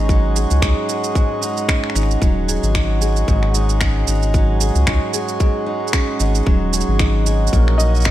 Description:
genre	folktronica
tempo	113 BPM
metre	4/4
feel	swing 56% on 16ths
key	unclear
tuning	A4 = 440 Hz
part	pedal harmonium	sustained chords	0.0-8.1 s	Ab3 to Db5	-24 LUFS	right 2 dB	none
part	picked steel-string acoustic guitar	arpeggios	0.0-8.1 s	Ab2 to Ab4	-23 LUFS	right 1 dB	vintage 12-bit sampler grit
part	round analog bass	bass	0.0-8.1 s	Eb1 to Db2	-17 LUFS	equal	none
part	electronic kick drum	drums	0.1-8.1 s	none	-17 LUFS	equal	none
part	electronic shaker and finger snaps	drums	0.1-8.1 s	none	-24 LUFS	right 3 dB	none
part	felt-muted upright piano	melody	7.8-8.1 s	Eb5	-23 LUFS	left 1 dB	none
room	light reverb, small room ambience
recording	none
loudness	-15 LUFS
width	side -14 dB against mid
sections	0.0-8.1 A section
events	none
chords	0.0 Ab7sus4; 7.5 Gb69/Bb

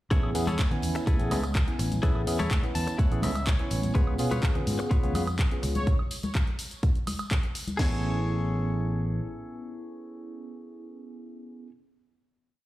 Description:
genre	filtered disco house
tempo	125 BPM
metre	4/4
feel	straight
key	A major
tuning	A4 = 440 Hz
part	tine electric piano	accompaniment	0.1-11.7 s	B3 to G#5	-33 LUFS	equal	phaser, sidechain pumping
part	direct-recorded clean electric guitar	riff	0.1-11.7 s	E4 to A5	-36 LUFS	left 3 dB	sidechain pumping
part	fingered electric bass	bass	0.1-9.2 s	A1 to C#3	-30 LUFS	equal	sidechain pumping
part	house drum kit	drums	0.1-7.9 s	crash cymbal, kick drum, snare drum	-25 LUFS	equal	none
part	house drum kit	drums	0.1-7.8 s	handclaps, hi-hat, shaker, woodblock	-35 LUFS	right 1 dB	sidechain pumping on hats, sidechain pumping on perc
part	tambourine and congas	percussion	0.1-7.8 s	none	-37 LUFS	left 2 dB	sidechain pumping on perc
part	analog synth brass	melody	5.7-5.9 s	C#5	-38 LUFS	right 1 dB	chorus, vintage 12-bit sampler grit, sidechain pumping, digital delay
room	digital ambience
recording	played on a big sound system in a bare room, large studio reverb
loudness	-25 LUFS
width	side -16 dB against mid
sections	0.1-7.8 drop; 7.8-11.6 final chord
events	drop 0.1-7.8; clean electric guitar fill 2.5-4.0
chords	0.1 Amaj7; 4.0 C#7; 5.9 N.C.; 7.8 Amaj7

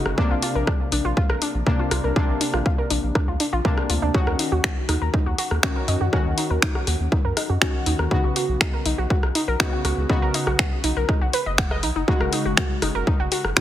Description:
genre	melodic techno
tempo	121 BPM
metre	4/4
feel	straight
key	unclear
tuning	A4 = 440 Hz
part	synth brass stab	stabs	0.0-13.6 s	C3 to Gb4	-27 LUFS	left 2 dB	chorus, sidechain pumping, tape echo
part	round analog bass	bass	0.1-13.5 s	Gb1 to Gb2	-25 LUFS	equal	sidechain pumping
part	punchy analog drum machine	drums	0.1-13.6 s	finger snaps, hi-hat, rim click	-24 LUFS	left 1 dB	none
part	warbly dusty pluck	arpeggios	0.2-13.6 s	D4 to F#5	-27 LUFS	equal	chorus, sidechain pumping, tape echo
part	electronic kick drum	drums	0.2-13.6 s	none	-22 LUFS	equal	overdrive
room	light reverb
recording	heavily compressed radio sound, multiband compression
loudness	-19 LUFS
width	side -12 dB against mid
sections	0.0-13.6 A section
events	none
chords	0.2 Bbadd9; 4.1 Ebm7; 8.1 Bsus2; 12.1 Gbsus2

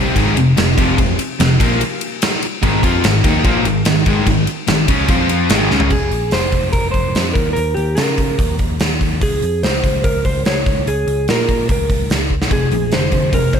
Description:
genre	classic rock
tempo	146 BPM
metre	4/4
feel	straight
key	F minor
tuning	A4 = 440 Hz
part	biting overdriven guitar	riff	0.0-5.9, 12.5-13.6 s	F2 to F4	-21 LUFS	left 9 dB	none
part	cranked stack guitar	riff	0.0-5.9, 12.5-13.6 s	F2 to F4	-22 LUFS	right 8 dB	overdrive, slapback echo
part	overdriven electric guitar	riff	0.0-5.9 s	F2 to F4	-19 LUFS	equal	slapback echo
part	picked electric bass	bass	0.0-13.6 s	F1 to Db3	-20 LUFS	equal	none
part	gated 80s drum kit	drums	0.2-13.6 s	crash cymbal, hi-hat, kick drum, ride cymbal, snare drum, toms	-17 LUFS	equal	none
part	electric slide guitar	melody	5.9-13.6 s	G4 to Db5	-20 LUFS	right 1 dB	none
part	picked plugged-in steel-string acoustic guitar	accompaniment	12.5-13.6 s	F2 to Ab4	-31 LUFS	right 6 dB	none
room	moderate lush hall reverb, RT60 1.7 s, studio ambience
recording	big arena sound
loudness	-13 LUFS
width	side -7 dB against mid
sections	0.0-5.9 A section; 5.9-13.6 B section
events	drum fill 5.7, 12.3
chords	0.0 Fm; 2.6 Ab5; 5.1 F5; 5.5 Ab5; 5.9 Fm; 7.4 Eb5; 9.2 Db; 10.7 Bbm/Db; 12.5 Fm

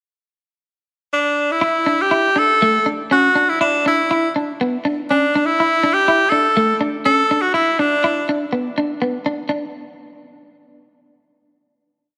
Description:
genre	highlife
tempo	122 BPM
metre	4/4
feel	straight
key	D major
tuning	A4 = 440 Hz
part	edgy tenor saxophone	melody	1.1-8.3 s	D4 to A4	-18 LUFS	equal	none
part	clean electric guitar	accompaniment	1.6-9.6 s	A3 to E4	-22 LUFS	equal	lush chorus
room	wet plate reverb, RT60 3.2 s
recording	none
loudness	-17 LUFS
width	mono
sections	0.0-1.6 pickup bar; 1.6-9.5 A section; 9.5-11.5 final note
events	none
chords	0.0 N.C.; 1.6 Dsus2; 3.6 E5; 5.6 Dsus2; 7.5 E5; 9.5 N.C.

